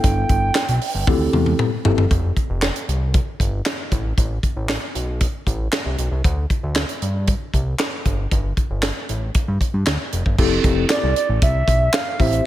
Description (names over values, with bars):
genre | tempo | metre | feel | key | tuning
early-eighties boogie funk | 116 BPM | 4/4 | straight | unclear | A4 = 440 Hz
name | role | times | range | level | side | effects
hollow clarinet-like synth lead | melody | 0.0-1.0, 10.9-12.5 s | D5 to G5 | -22 LUFS | right 3 dB | chorus, slapback echo
mellow tine electric piano | accompaniment | 0.0-2.0, 10.4-12.5 s | B3 to C5 | -23 LUFS | left 2 dB | medium stereo tremolo, slapback echo
fat analog bass | bass | 0.0-12.4 s | F1 to G2 | -21 LUFS | equal | none
tight funk drum kit | drums | 0.0-12.4 s | crash cymbal, handclaps, hi-hat, kick drum, snare drum, toms | -20 LUFS | equal | none
room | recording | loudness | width
light reverb, studio ambience | none | -18 LUFS | side -14 dB against mid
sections
0.0-2.1 A section; 2.1-10.4 B section; 10.4-12.5 A section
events
drum fill 1.1-2.1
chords
0.0 G69; 1.1 D9sus4; 2.1 F5; 3.9 Am; 6.2 D7sus4; 8.1 Gsus2; 10.4 Fmaj7